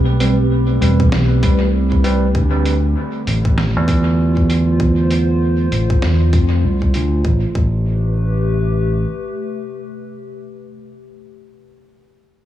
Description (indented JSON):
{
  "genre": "ambient dub",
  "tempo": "98 BPM",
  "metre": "4/4",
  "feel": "swing 60% on 16ths",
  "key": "A minor",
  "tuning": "A4 = 440 Hz",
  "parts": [
    { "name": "warbly tape-like pad", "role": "sustained chords", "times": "0.0-10.5 s", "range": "C3 to C5", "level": "-22 LUFS", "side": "equal", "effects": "chorus, built-in reverb" },
    { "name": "fingered electric bass", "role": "bass", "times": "0.0-9.0 s", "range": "E1 to F2", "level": "-15 LUFS", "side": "equal", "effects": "none" },
    { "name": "bell-like tine electric piano", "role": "stabs", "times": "0.2-2.3 s", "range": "G3 to B4", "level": "-22 LUFS", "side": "right 2 dB", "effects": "medium stereo tremolo, dub echo" },
    { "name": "lo-fi sampler-style drum kit", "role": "drums", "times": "0.2-7.1 s", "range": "hi-hat, snare drum", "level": "-26 LUFS", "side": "right 1 dB", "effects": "dub echo" },
    { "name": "electronic kick drum", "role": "drums", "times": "1.0-7.8 s", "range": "none", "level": "-17 LUFS", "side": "equal", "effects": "none" }
  ],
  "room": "little or no reverb",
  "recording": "small room ambience",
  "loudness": "-14 LUFS",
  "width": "side -12 dB against mid",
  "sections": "0.0-7.2 A section; 7.2-9.7 B section",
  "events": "none",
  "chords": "0.0 Am9; 2.3 Dm7; 7.2 Am9"
}